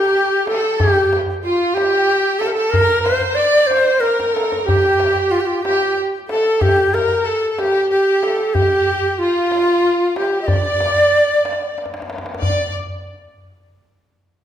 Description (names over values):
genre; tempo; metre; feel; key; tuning
Persian modal ensemble; 62 BPM (dotted quarters); 6/8; straight; unclear; A4 = 440 Hz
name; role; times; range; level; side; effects
breathy ney; melody; 0.0-12.7 s; F4 to Eb5+46c; -15 LUFS; equal; none
clear chamber violin section; second line; 0.0-12.7 s; F4 to D5; -22 LUFS; equal; none
tombak; percussion; 0.2-12.7 s; none; -24 LUFS; left 1 dB; none
room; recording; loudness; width
wet recital hall reverb, RT60 1.7 s; minimal, uncompressed stereo recording; -14 LUFS; side -10 dB against mid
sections
0.0-12.4 A section; 12.4-14.4 B section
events
drum fill 4.0-4.7, 11.8-12.4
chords
none